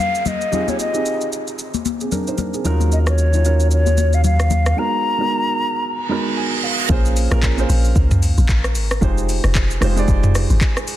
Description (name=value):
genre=amapiano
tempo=113 BPM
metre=4/4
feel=swing 58% on 16ths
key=Bb minor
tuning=A4 = 440 Hz
part: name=mellow hollow silver concert flute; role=melody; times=0.0-6.4 s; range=Db5 to Bb5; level=-21 LUFS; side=left 2 dB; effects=ping-pong delay
part: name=dark concert grand piano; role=accompaniment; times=0.0-11.0 s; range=F3 to Cb6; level=-24 LUFS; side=right 4 dB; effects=none
part: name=downlifter and reverse cymbal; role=sound effects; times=0.0-6.9 s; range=none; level=-26 LUFS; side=right 4 dB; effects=none
part: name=smooth R&B drum kit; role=drums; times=0.1-11.0 s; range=handclaps, hi-hat, kick drum, rim click, shaker, toms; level=-20 LUFS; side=equal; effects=none
part: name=congas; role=percussion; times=0.3-4.7 s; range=none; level=-24 LUFS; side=left 6 dB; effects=none
part: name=warm sub bass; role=bass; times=2.6-4.7 s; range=Eb2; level=-15 LUFS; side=equal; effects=none
part: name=deep log drum bass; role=bass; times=6.9-10.6 s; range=F1 to Db2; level=-17 LUFS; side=equal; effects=none
room=digital ambience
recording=dense, heavily limited modern master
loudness=-15 LUFS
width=side -13 dB against mid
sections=0.0-6.9 A section; 6.9-11.0 B section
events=break 4.8-6.9; grand piano fill 5.8-6.9; reverse cymbal 6.1-6.9; drop 6.9-11.0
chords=0.0 Bbm9; 0.5 Fm9; 2.6 Ebm9; 4.8 Abm9; 6.9 Bbm9; 9.0 Fm9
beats=| 0.53 1.06 1.59 2.12 | 2.65 3.18 3.71 4.24 | 4.77 5.30 5.84 6.37 | 6.90 7.43 7.96 8.49 | 9.02 9.55 10.08 10.61